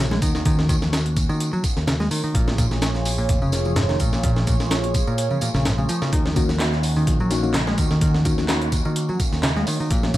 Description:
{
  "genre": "breakbeat, breaks",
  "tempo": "127 BPM",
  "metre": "4/4",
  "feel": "swing 54% on 16ths",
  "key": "Eb minor",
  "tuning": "A4 = 435 Hz",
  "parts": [
    { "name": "phased analog pad", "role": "sustained chords", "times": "0.0-10.2 s", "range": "Eb3 to Db5", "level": "-28 LUFS", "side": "right 2 dB", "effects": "phaser, chorus, sidechain pumping" },
    { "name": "picked electric bass", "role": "riff", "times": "0.0-10.2 s", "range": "Ab2 to Ab3", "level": "-24 LUFS", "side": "equal", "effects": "vintage 12-bit sampler grit, ping-pong delay" },
    { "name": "fingered electric bass", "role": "bass", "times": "0.0-10.2 s", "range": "F1 to Eb2", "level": "-24 LUFS", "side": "equal", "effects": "none" },
    { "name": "breakbeat sampler-style drum kit", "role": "drums", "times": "0.1-10.2 s", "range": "hi-hat, kick drum, snare drum", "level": "-23 LUFS", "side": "equal", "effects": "small room ambience" },
    { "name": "electronic tambourine and handclaps", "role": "drums", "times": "0.1-10.2 s", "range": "none", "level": "-31 LUFS", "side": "right 1 dB", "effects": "small room ambience" },
    { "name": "congas and bongos", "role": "percussion", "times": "0.1-10.1 s", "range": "none", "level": "-33 LUFS", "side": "left 2 dB", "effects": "none" },
    { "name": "mellow tine electric piano", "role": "stabs", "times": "6.4-10.2 s", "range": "F3 to Gb4", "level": "-27 LUFS", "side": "left 3 dB", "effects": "slow stereo tremolo, ping-pong delay" }
  ],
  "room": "little or no reverb",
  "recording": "vinyl crackle",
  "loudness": "-18 LUFS",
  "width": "side -15 dB against mid",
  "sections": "0.0-10.2 A section",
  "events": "none",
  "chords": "0.0 Ebm7; 2.3 Bbm7; 6.1 Ebm7",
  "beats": "| 0.46 0.93 1.40 1.88 | 2.35 2.82 3.29 3.77 | 4.24 4.71 5.18 5.66 | 6.13 6.60 7.07 7.54 | 8.02 8.49 8.96 9.44 | 9.91"
}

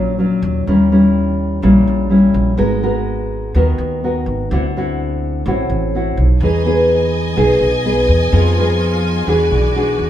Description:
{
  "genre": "bossa nova",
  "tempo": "126 BPM",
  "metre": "4/4",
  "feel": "straight",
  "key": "unclear",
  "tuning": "A4 = 442 Hz",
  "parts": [
    { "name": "nylon-string guitar", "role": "accompaniment", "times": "0.0-10.1 s", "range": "A2 to Bb4", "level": "-15 LUFS", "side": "left 1 dB", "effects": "none" },
    { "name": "upright bass", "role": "bass", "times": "0.0-10.1 s", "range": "Ab1 to F2", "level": "-18 LUFS", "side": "right 1 dB", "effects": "none" },
    { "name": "bright studio string section", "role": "sustained chords", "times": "6.4-10.1 s", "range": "F4 to G#5", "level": "-23 LUFS", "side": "left 1 dB", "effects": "none" }
  ],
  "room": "moderate stone room reverb, RT60 1.0 s",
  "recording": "band playing live in one room",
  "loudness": "-13 LUFS",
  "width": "side -11 dB against mid",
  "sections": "0.0-10.1 A section",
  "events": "none",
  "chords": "0.0 Ebm9; 0.7 Eb7b9; 2.6 Abm9; 4.5 D9; 6.4 Emaj7; 8.3 Fm7b5; 9.3 E9",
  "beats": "0.20 | 0.68 1.16 1.64 2.12 | 2.59 3.07 3.55 4.03 | 4.51 4.98 5.46 5.94 | 6.42 6.89 7.37 7.85 | 8.33 8.80 9.28 9.76"
}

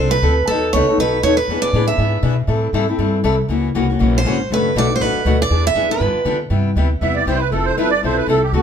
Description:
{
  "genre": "acoustic string swing (jazz manouche)",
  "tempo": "239 BPM",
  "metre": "4/4",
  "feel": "swing 56% on 8ths",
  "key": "unclear",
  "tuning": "A4 = 440 Hz",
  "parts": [
    { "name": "picked steel-string acoustic guitar", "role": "melody", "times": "0.0-6.4 s", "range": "A4 to E5", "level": "-18 LUFS", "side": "right 4 dB", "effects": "none" },
    { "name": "picked acoustic archtop guitar", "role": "accompaniment", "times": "0.0-8.6 s", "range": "B2 to A4", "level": "-19 LUFS", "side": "left 3 dB", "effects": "none" },
    { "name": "upright bass", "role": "bass", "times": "0.0-8.6 s", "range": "F1 to D3", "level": "-19 LUFS", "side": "equal", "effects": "none" },
    { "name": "musette accordion", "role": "second line", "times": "7.0-8.6 s", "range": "F#4 to E5", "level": "-19 LUFS", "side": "right 7 dB", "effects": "none" }
  ],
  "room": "moderate studio reverb, RT60 0.8 s",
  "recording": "band playing live in one room",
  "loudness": "-15 LUFS",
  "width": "side -8 dB against mid",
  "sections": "0.0-6.5 A section; 6.5-8.6 B section",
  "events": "accordion solo 6.5-8.6",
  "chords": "0.5 B7; 1.5 E7; 2.5 Am7; 3.5 F#7; 4.5 Bm7/F#; 5.5 E7b9; 6.0 G7; 6.5 Cmaj7; 7.5 Fmaj9",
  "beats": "0.23 | 0.48 0.73 0.98 1.24 | 1.49 1.74 1.99 2.24 | 2.49 2.75 3.00 3.25 | 3.50 3.75 4.00 4.25 | 4.50 4.76 5.01 5.26 | 5.51 5.76 6.01 6.26 | 6.51 6.77 7.02 7.27 | 7.52 7.77 8.02 8.27 | 8.52"
}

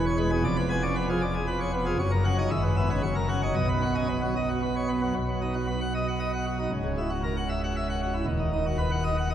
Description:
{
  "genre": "classical, organ toccata",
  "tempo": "116 BPM",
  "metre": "3/4",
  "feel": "straight",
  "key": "B major",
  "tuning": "A4 = 442 Hz",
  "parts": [
    { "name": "pipe organ, plenum", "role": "solo", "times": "0.0-9.3 s", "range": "C#1 to Ab5", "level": "-24 LUFS", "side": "equal", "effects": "none" }
  ],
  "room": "wet cathedral reverb, RT60 5.8 s",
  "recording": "heard from further back in the room",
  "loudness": "-25 LUFS",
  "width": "side -10 dB against mid",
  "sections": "0.0-5.2 A section; 5.2-9.3 B section",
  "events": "none",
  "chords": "0.5 Fdim7; 2.0 F#; 2.5 E/G#; 3.0 F#; 3.6 B; 6.7 F#7/C#; 8.3 B/D#",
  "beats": "| 0.45 0.97 1.48 | 1.99 2.51 3.04 | 3.56 4.10 4.63 | 5.16 5.69 6.21 | 6.72 7.24 7.76 | 8.27 8.79 9.30"
}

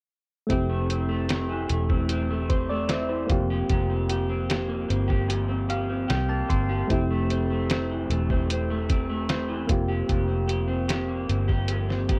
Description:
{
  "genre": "indie pop, bedroom pop",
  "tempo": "75 BPM",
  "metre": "4/4",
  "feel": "straight",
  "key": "F major",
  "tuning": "A4 = 435 Hz",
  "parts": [
    { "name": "electric guitar through a small old amp", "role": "accompaniment", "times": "0.5-12.2 s", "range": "F2 to G4", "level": "-32 LUFS", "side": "equal", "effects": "lush chorus, vibrato effect" },
    { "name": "soft electric-piano-like synth keys", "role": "accompaniment", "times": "0.5-12.2 s", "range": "A3 to C6", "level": "-33 LUFS", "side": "equal", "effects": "chorus, cassette tape" },
    { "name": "vintage muted fingered electric bass", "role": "bass", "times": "0.5-12.2 s", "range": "E1 to C2", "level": "-30 LUFS", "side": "equal", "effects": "none" },
    { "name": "lo-fi sampler-style drum kit", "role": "drums", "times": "0.5-12.2 s", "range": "hi-hat, kick drum, snare drum", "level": "-29 LUFS", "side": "equal", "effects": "none" }
  ],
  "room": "light reverb",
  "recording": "dry, close 1970s-style studio recording",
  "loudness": "-26 LUFS",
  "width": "mono",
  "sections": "0.5-12.2 A section",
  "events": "synth keys fill 5.3-6.9",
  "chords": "0.5 Fmaj7; 3.3 Fsus24; 6.9 Fmaj7; 9.7 Fsus24",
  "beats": "| 0.49 1.29 2.09 2.89 | 3.69 4.50 5.30 6.10 | 6.90 7.70 8.50 9.30 | 10.10 10.90 11.70"
}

